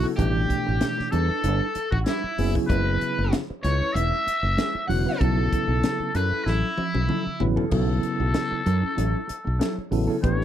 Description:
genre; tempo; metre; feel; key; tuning
electric jazz fusion; 96 BPM; 4/4; swing 54% on 16ths; unclear; A4 = 441 Hz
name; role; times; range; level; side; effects
trumpet with metal mute; melody; 0.0-10.4 s; E4 to F#5; -29 LUFS; left 2 dB; none
overdriven electric guitar; second line; 0.0-7.4 s; E4 to F#5; -31 LUFS; right 1 dB; none
tine electric piano; accompaniment; 0.0-10.4 s; B2 to B4; -26 LUFS; right 1 dB; fast stereo tremolo
mellow electric guitar; stabs; 0.0-10.4 s; E3 to B4; -31 LUFS; equal; wide subtle chorus, slapback echo
fingered electric bass; bass; 0.0-10.4 s; E1 to F#2; -24 LUFS; equal; none
crisp fusion drum kit; drums; 0.2-10.4 s; crash cymbal, hi-hat, kick drum, snare drum, toms; -28 LUFS; equal; none
room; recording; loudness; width
little or no reverb; none; -21 LUFS; side -10 dB against mid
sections
0.0-7.7 A section; 7.7-10.4 A section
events
drum fill 6.5-7.7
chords
0.2 A9sus4; 2.4 F#9sus4; 5.2 B9sus4

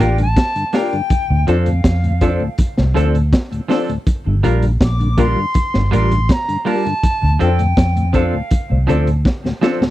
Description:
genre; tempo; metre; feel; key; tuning
roots reggae; 81 BPM; 4/4; straight; G minor; A4 = 440 Hz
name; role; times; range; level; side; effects
silver concert flute; melody; 0.0-8.9 s; F5 to D6; -22 LUFS; equal; none
mellow tonewheel organ; accompaniment; 0.0-9.9 s; D2 to G4; -22 LUFS; left 3 dB; chorus vibrato, slow rotary speaker
semi-hollow electric guitar; accompaniment; 0.0-9.8 s; F3 to Bb4; -22 LUFS; right 6 dB; none
reed electric piano; stabs; 0.0-9.8 s; F4 to D5; -22 LUFS; left 5 dB; fast tremolo
vintage muted fingered electric bass; bass; 0.0-9.2 s; G1 to F2; -15 LUFS; equal; none
crunchy breakbeat drum kit; drums; 0.0-9.9 s; hi-hat, kick drum, snare drum; -16 LUFS; equal; none
room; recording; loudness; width
little or no reverb; dry, close 1970s-style studio recording; -14 LUFS; side -15 dB against mid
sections
0.0-9.9 A section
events
drum fill 9.3-9.9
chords
0.0 Gm7; 1.1 Dm7; 4.1 Gm7; 7.0 Dm7

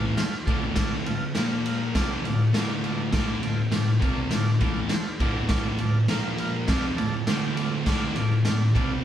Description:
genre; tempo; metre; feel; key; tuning
garage rock duo or trio; 101 BPM; 4/4; straight; D minor; A4 = 437 Hz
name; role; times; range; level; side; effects
combo organ; sustained chords; 0.0-8.9 s; F4 to A5; -35 LUFS; right 2 dB; none
thick fuzz guitar; riff; 0.0-9.0 s; D2 to C4; -25 LUFS; equal; distortion
raw garage drum kit; drums; 0.2-8.9 s; crash cymbal, kick drum, ride cymbal, snare drum; -26 LUFS; equal; none
room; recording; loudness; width
wet small room reverb, RT60 0.5 s; band playing live in one room; -22 LUFS; side -10 dB against mid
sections
0.0-9.0 A section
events
transistor combo organ fill 6.7-7.9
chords
0.0 Dm; 1.4 Bb5; 2.0 Dm; 6.1 Bb5; 6.7 Dm

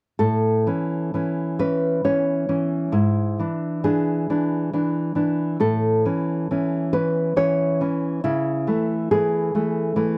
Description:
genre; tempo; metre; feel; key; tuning
romantic piece for solo classical guitar; 67 BPM; 3/4; uneven beats, rubato; A major; A4 = 442 Hz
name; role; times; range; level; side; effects
nylon-string guitar; solo; 0.2-10.2 s; G#2 to C#5; -22 LUFS; equal; none
room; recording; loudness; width
light reverb; dry, close 1970s-style studio recording; -22 LUFS; mono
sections
0.2-10.2 A section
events
none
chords
0.2 A; 3.0 E7/G#; 5.6 A; 8.2 A/C#

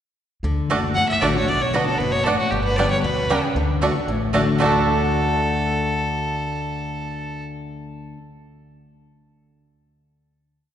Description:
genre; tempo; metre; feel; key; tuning
bluegrass; 231 BPM; 4/4; straight; D major; A4 = 440 Hz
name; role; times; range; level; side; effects
picked steel-string acoustic guitar; accompaniment; 0.4-8.2 s; G2 to G4; -24 LUFS; left 2 dB; none
upright bass; bass; 0.4-8.1 s; F#1 to D2; -28 LUFS; equal; none
bluegrass banjo; arpeggios; 0.7-8.2 s; G3 to A4; -26 LUFS; right 2 dB; none
mandolin; stabs; 0.7-8.2 s; A3 to A5; -27 LUFS; right 4 dB; none
clear fiddle; melody; 0.9-7.4 s; F#4 to F#5; -24 LUFS; equal; none
room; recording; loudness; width
wet church reverb, RT60 3.1 s; recorded in a church or concert hall, nothing above 10.8 kHz; -18 LUFS; side -9 dB against mid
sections
0.4-4.6 A section; 4.6-6.7 final chord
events
none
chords
0.4 D; 1.5 Bm; 2.5 G; 3.6 D

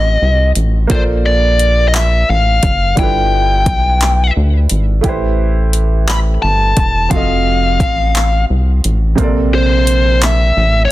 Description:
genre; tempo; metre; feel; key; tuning
slow six-eight R&B; 58 BPM (dotted quarters); 6/8; straight; unclear; A4 = 440 Hz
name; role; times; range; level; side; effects
bluesy overdriven lead guitar; melody; 0.0-10.9 s; C5 to B5; -15 LUFS; left 2 dB; distortion, ping-pong delay
clear concert grand piano; accompaniment; 0.0-10.9 s; C3 to Eb5; -20 LUFS; right 3 dB; none
rubbery square bass; bass; 0.0-10.9 s; E1 to D2; -13 LUFS; equal; none
smooth R&B drum kit; drums; 0.6-10.4 s; handclaps, hi-hat, kick drum; -16 LUFS; equal; overdrive
room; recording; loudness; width
little or no reverb; dense, heavily limited modern master; -10 LUFS; side -16 dB against mid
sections
0.0-10.9 A section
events
none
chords
0.0 F7b9; 0.9 Bbmaj9; 3.0 G13; 5.0 Am9; 7.1 F7b9; 9.2 Bbmaj9

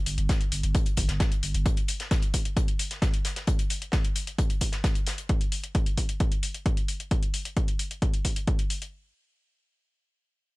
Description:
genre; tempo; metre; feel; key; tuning
driving peak-time techno; 132 BPM; 4/4; straight; unclear; A4 = 440 Hz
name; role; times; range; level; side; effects
saturated sub bass; bass; 0.1-1.7 s; G1; -27 LUFS; equal; tube saturation, sidechain pumping, low-pass filter
electronic hi-hat; drums; 0.1-8.9 s; none; -34 LUFS; left 2 dB; none
modern studio drum kit; drums; 0.1-5.3 s; hi-hat, snare drum; -38 LUFS; left 2 dB; sidechain pumping on hats, high-pass filter on hats, high-pass filter on snare, high-pass filter on room
electronic kick drum; drums; 0.3-8.6 s; none; -26 LUFS; equal; none
room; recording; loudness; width
digital ambience; none; -25 LUFS; side -22 dB against mid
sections
0.0-8.9 A section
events
none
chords
none

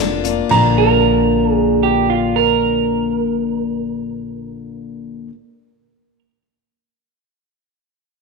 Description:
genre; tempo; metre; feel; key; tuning
country; 114 BPM; 4/4; straight; Bb major; A4 = 440 Hz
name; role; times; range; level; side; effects
bright upright piano; melody; 0.0-5.3 s; Bb5; -20 LUFS; right 6 dB; none
picked steel-string acoustic guitar; accompaniment; 0.0-5.3 s; Bb2 to F4; -18 LUFS; left 8 dB; none
upright bass; bass; 0.0-5.3 s; F1 to Bb1; -24 LUFS; right 1 dB; none
electric guitar through a small old amp; second line; 0.8-6.2 s; F4 to Bb4; -17 LUFS; right 12 dB; tape echo
room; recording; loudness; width
moderate echo chamber reverb, RT60 1.5 s, small room ambience; 1960s-style stereo with parts hard left and right; -13 LUFS; side -3 dB against mid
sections
0.5-4.7 A section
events
none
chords
0.0 Bb

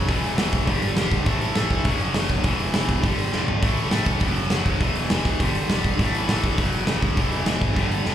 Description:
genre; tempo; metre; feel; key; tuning
punk rock; 203 BPM; 4/4; straight; unclear; A4 = 440 Hz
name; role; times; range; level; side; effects
tight distorted guitar; riff; 0.0-8.1 s; E2 to A3; -24 LUFS; equal; distortion, slapback echo
growling picked electric bass; bass; 0.0-8.1 s; E1 to D2; -26 LUFS; equal; overdrive
big rock drum kit; drums; 0.1-8.1 s; hi-hat, kick drum, snare drum, toms; -24 LUFS; equal; none
room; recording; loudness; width
small room ambience; live gig heard through the venue's PA, club reverb; -20 LUFS; side -10 dB against mid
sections
0.0-8.1 A section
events
drum fill 3.3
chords
0.1 E5; 0.7 G5; 1.3 A5; 1.9 F#5; 2.4 E5; 3.0 G5; 3.6 A5; 4.2 F#5; 4.8 E5; 5.4 G5; 6.0 A5; 6.6 F#5; 7.2 E

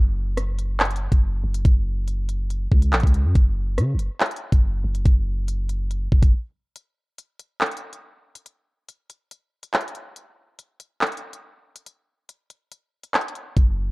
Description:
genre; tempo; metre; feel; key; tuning
hip hop, drill; 141 BPM; 4/4; half-time; unclear; A4 = 440 Hz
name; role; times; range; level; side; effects
long sustained 808-style bass; bass; 0.0-6.3, 13.6-13.9 s; F#1 to C#3; -23 LUFS; equal; none
drill drum kit; drums; 0.4-13.7 s; handclaps, hi-hat, kick drum, rim click; -19 LUFS; equal; none
room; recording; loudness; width
little or no reverb; dark, warm production; -20 LUFS; side -25 dB against mid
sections
0.0-6.8 A section; 6.8-13.9 B section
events
break 6.3-6.8, 6.8-13.6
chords
none

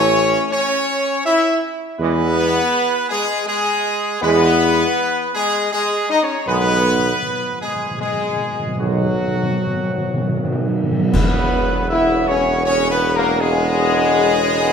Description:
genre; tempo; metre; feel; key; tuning
classical, ceremonial fanfare; 80 BPM; 3/4; straight; E lydian from 11.1 s; A4 = 439 Hz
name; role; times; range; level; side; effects
clear trumpet section; melody; 0.0-14.7 s; F#4 to E5; -21 LUFS; right 1 dB; none
warm French horn section; sustained chords; 0.0-14.7 s; F#3 to E4; -20 LUFS; left 3 dB; none
warm trombone section; sustained chords; 0.0-14.7 s; C#3 to B3; -23 LUFS; right 3 dB; none
warm tuba; bass; 0.0-14.7 s; E1 to E2; -21 LUFS; right 2 dB; none
timpani; percussion; 6.5-12.2 s; E2 to B2; -22 LUFS; right 1 dB; none
cymbal swell, clash cymbals and concert bass drum; percussion; 8.8-12.6 s; none; -25 LUFS; left 1 dB; none
room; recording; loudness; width
wet scoring stage reverb, RT60 1.7 s; none; -15 LUFS; side -6 dB against mid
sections
0.0-11.1 A section; 11.1-14.7 B section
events
timpani fill 6.5-11.1; band accent 11.1-11.9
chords
0.0 A; 2.0 E; 6.5 B5; 11.1 E6

